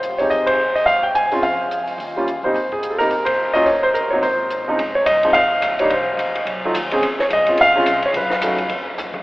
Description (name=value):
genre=jazz piano trio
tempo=214 BPM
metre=4/4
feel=swing 59% on 8ths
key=Ab major, Db major from 4.8 s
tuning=A4 = 440 Hz
part: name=warm concert grand piano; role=melody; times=0.0-8.7 s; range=Db2 to Ab5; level=-16 LUFS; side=equal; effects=none
part: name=upright bass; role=bass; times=0.0-9.2 s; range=Ab1 to Ab2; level=-37 LUFS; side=equal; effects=none
part: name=compact cocktail drum kit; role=drums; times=0.0-9.2 s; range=hi-hat, kick drum, ride cymbal, snare drum, toms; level=-27 LUFS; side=left 1 dB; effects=none
room=wet cathedral reverb, RT60 6.6 s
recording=recorded in a church or concert hall, telephone sound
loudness=-16 LUFS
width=side -19 dB against mid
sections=0.0-4.8 A section; 4.8-9.2 B section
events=band accent 0.5, 3.3; drum fill 9.0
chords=0.3 Fm9; 1.4 Bb5; 2.0 Eb; 2.6 Ab; 3.7 Eb5; 4.2 Ab; 4.8 Dbmaj9; 5.9 Bbsus2; 6.5 Cb; 7.0 Bbmadd9; 8.1 Cb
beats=0.03 | 0.31 0.59 0.87 1.15 | 1.43 1.71 1.99 2.27 | 2.55 2.83 3.11 3.39 | 3.67 3.95 4.23 4.51 | 4.79 5.07 5.35 5.63 | 5.91 6.19 6.47 6.75 | 7.03 7.31 7.58 7.87 | 8.14 8.42 8.70 8.98